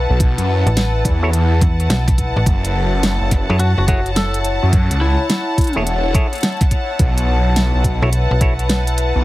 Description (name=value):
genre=glitch hop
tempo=106 BPM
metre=4/4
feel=swing 64% on 16ths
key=F# minor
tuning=A4 = 439 Hz
part: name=slap-like FM bass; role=bass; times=0.0-4.6, 8.0-9.1 s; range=F#1 to F#2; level=-17 LUFS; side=equal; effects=tube saturation
part: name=warm studio string section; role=texture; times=0.0-9.2 s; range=E4 to A5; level=-22 LUFS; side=left 2 dB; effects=sidechain pumping
part: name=phased detuned saw bass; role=bass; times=0.1-9.2 s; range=E1 to F#2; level=-16 LUFS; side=equal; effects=phaser, overdrive
part: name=electronic kick drum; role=drums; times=0.2-8.6 s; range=none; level=-16 LUFS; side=equal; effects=none
part: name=pop drum kit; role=drums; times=0.2-9.1 s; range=hi-hat, snare drum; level=-20 LUFS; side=equal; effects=none
part: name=auto-wah clav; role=stabs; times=1.2-8.5 s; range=E4 to C#5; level=-24 LUFS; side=equal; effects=sidechain pumping, ping-pong delay
part: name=lightly driven lead guitar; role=melody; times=3.6-5.8 s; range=E4 to A4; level=-24 LUFS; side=left 2 dB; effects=ping-pong delay
room=light reverb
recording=heavily compressed radio sound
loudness=-14 LUFS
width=side -17 dB against mid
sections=0.0-9.2 A section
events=none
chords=0.0 B7sus4; 2.5 F#m7; 7.0 B7sus4